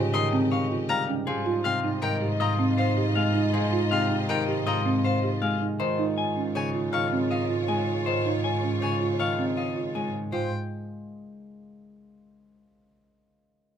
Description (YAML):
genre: classical, minimalist pattern music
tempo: 159 BPM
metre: 6/4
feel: straight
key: unclear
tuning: A4 = 441 Hz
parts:
  - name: mellow French horn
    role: second line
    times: 0.0-10.1 s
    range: Eb4 to G4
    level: -32 LUFS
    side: right 3 dB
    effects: none
  - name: Celtic harp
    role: accompaniment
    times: 0.0-12.6 s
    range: C3 to Ab3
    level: -31 LUFS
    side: left 1 dB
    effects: none
  - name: clear symphonic string section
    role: sustained chords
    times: 0.0-10.1 s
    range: F4 to Eb5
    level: -36 LUFS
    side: left 2 dB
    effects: none
  - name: folk marimba with soft mallets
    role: arpeggios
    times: 0.0-10.5 s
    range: C4 to G4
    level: -30 LUFS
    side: right 3 dB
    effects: none
  - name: rich symphonic double bass section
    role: bass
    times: 0.0-10.5 s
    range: Ab2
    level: -30 LUFS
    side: right 1 dB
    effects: none
  - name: clean electric guitar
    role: melody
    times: 0.1-10.5 s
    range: Ab4 to Ab5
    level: -30 LUFS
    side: left 6 dB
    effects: none
  - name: dark violin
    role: arpeggios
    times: 0.1-10.5 s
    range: F5 to Db6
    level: -34 LUFS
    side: left 4 dB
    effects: none
room: light reverb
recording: close, detailed microphones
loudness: -23 LUFS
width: side -8 dB against mid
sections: 0.0-10.3 A section; 10.3-12.6 B section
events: none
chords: 0.0 Eb9/Ab; 1.3 Fm9/Ab; 5.8 Db/Ab; 10.3 N.C.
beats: 0.14 0.51 0.89 | 1.27 1.65 2.02 2.40 2.78 3.15 | 3.53 3.91 4.29 4.67 5.04 5.42 | 5.80 6.17 6.55 6.93 7.31 7.68 | 8.06 8.44 8.82 9.19 9.57 9.95 | 10.32 10.70 11.08 11.46 11.84 12.21